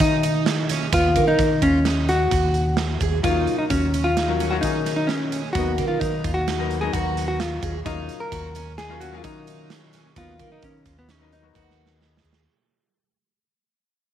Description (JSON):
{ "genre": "progressive instrumental, band music in an uneven meter", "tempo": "130 BPM", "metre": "5/4", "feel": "straight", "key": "unclear", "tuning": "A4 = 440 Hz", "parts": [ { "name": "hollow-body jazz guitar", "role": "melody", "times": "0.0-12.2 s", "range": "Cb4 to Bb4", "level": "-23 LUFS", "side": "left 2 dB", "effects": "none" }, { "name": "picked twelve-string acoustic guitar", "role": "arpeggios", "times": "0.0-12.4 s", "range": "Bb3 to Ab4", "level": "-29 LUFS", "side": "right 8 dB", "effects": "none" }, { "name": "fretless electric bass", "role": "bass", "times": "0.0-12.5 s", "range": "Eb2 to Eb3", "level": "-25 LUFS", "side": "equal", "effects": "none" }, { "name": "big rock drum kit", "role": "drums", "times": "0.0-12.4 s", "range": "hi-hat, kick drum, snare drum", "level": "-28 LUFS", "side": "right 3 dB", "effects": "none" }, { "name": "bright concert grand piano", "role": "accompaniment", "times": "3.2-12.4 s", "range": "Gb3 to Ab4", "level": "-31 LUFS", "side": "left 12 dB", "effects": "none" } ], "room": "moderate plate reverb, RT60 2.2 s", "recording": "1960s-style stereo with parts hard left and right", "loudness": "-19 LUFS", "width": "side -10 dB against mid", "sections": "0.0-12.5 A section", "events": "fade-out 0.0-12.5; drum fill 11.6-12.5", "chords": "0.0 Eb7(no3); 0.9 Ab7sus2/Eb (rootless); 3.2 Ebm7; 5.5 Abm9/Eb (rootless); 7.9 Ebm7; 10.2 Abm9/Eb (rootless)" }